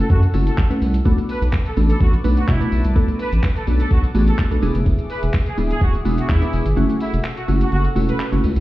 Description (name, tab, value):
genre	dance-pop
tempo	126 BPM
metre	4/4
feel	straight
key	B dorian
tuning	A4 = 440 Hz
part	clear horn section	melody	0.0-8.3 s	E4 to B4	-28 LUFS	right 1 dB	sidechain pumping, ping-pong delay
part	glassy wavetable pluck	accompaniment	0.0-8.6 s	F#3 to B4	-23 LUFS	equal	chorus
part	sweeping resonant pad	sustained chords	0.0-8.6 s	G#4 to E6	-32 LUFS	left 1 dB	chorus, phaser, sidechain pumping
part	saturated sub bass	bass	0.0-8.6 s	D1 to B2	-18 LUFS	equal	sidechain pumping
part	jungle sampler-style drum kit	drums	0.1-8.6 s	handclaps, hi-hat, kick drum, shaker	-19 LUFS	equal	none
part	tambourine	percussion	1.1-8.6 s	none	-53 LUFS	left 7 dB	none
room	little or no reverb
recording	heard muffled through a wall, stone room reverb, EQ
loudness	-16 LUFS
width	side -16 dB against mid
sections	0.0-8.6 A section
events	kick muted 6.8-8.6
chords	0.0 F#m7; 1.1 Bm7; 4.6 E7; 6.8 F#m7